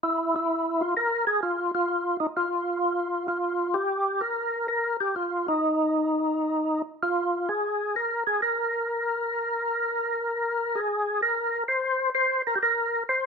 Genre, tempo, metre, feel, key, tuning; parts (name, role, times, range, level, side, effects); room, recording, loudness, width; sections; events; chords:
jazz; 129 BPM; 4/4; swing 68% on 8ths; A4 = 440 Hz
percussive tonewheel organ; solo; 0.0-13.3 s; Eb4 to C5; -24 LUFS; equal; slow rotary speaker, overdrive, chorus vibrato
moderate studio reverb, RT60 0.8 s; minimal, uncompressed stereo recording; -24 LUFS; side -5 dB against mid
0.0-13.3 A section